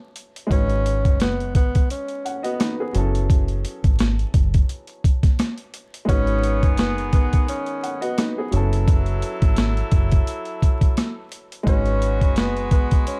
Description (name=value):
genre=hip hop, boom-bap hip-hop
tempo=86 BPM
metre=4/4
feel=swing 55% on 16ths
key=G# phrygian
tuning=A4 = 440 Hz
part: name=warm upright piano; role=accompaniment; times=0.0-13.2 s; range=F#3 to F#5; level=-32 LUFS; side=equal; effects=cassette tape, high-pass filter, low-pass filter
part: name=boom bap sampler-style drum kit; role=drums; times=0.2-13.2 s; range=hi-hat, kick drum, rim click, snare drum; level=-21 LUFS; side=equal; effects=none
part: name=breathy tenor saxophone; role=melody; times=0.5-13.2 s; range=B3 to C#4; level=-29 LUFS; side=equal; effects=high-pass filter, low-pass filter, digital delay
part: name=deep dub fingered electric bass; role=bass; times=0.5-13.0 s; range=F#1 to G#1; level=-25 LUFS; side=equal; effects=none
part: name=warm horn section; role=stabs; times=6.1-13.2 s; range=D#3 to B4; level=-32 LUFS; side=equal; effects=high-pass filter, low-pass filter, digital delay
room=small room ambience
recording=dark, warm production, vinyl crackle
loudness=-21 LUFS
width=mono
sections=0.0-13.2 A section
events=none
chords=0.0 F#m7; 0.5 G#m7; 3.0 F#m7; 6.1 G#m7; 8.5 F#m7; 11.7 G#m7